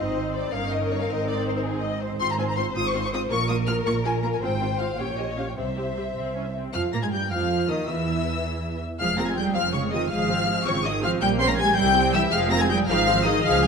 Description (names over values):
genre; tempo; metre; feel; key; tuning
quick classical-period movement for string orchestra; 107 BPM (dotted quarters); 6/8; straight; F minor; A4 = 440 Hz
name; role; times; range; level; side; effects
warm symphonic violin section; melody; 0.0-13.7 s; C5 to C7; -28 LUFS; left 4 dB; none
warm symphonic violin section; second line; 0.0-13.7 s; Ab4 to C6; -27 LUFS; left 4 dB; none
warm symphonic viola section; accompaniment; 0.0-13.7 s; Eb3 to C5; -28 LUFS; right 2 dB; none
dark symphonic cello section; bass; 0.0-13.7 s; G2 to C4; -30 LUFS; right 4 dB; none
warm symphonic double bass section; bass; 0.0-13.7 s; F1 to Bb2; -29 LUFS; right 3 dB; none
room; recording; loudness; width
moderate scoring stage reverb, RT60 1.7 s; none; -22 LUFS; side -5 dB against mid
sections
0.0-6.7 A section; 6.7-13.7 B section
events
none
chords
0.0 Ab; 0.5 Eb7/G; 1.1 Ab; 2.2 Fm/Ab; 3.3 Bb5; 4.4 Fm/Ab; 5.0 Gdim/Bb; 5.6 C; 6.7 Fm; 7.9 N.C.; 9.0 Fm; 10.1 Fm/Ab; 11.2 Gdim/Bb; 11.8 C; 12.3 Fm; 12.9 Ab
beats
0.53 | 1.09 1.64 | 2.20 2.75 | 3.31 3.86 | 4.42 4.99 | 5.57 6.16 | 6.74 7.31 | 7.88 8.44 | 9.00 9.56 | 10.11 10.67 | 11.22 11.77 | 12.33 12.89 | 13.45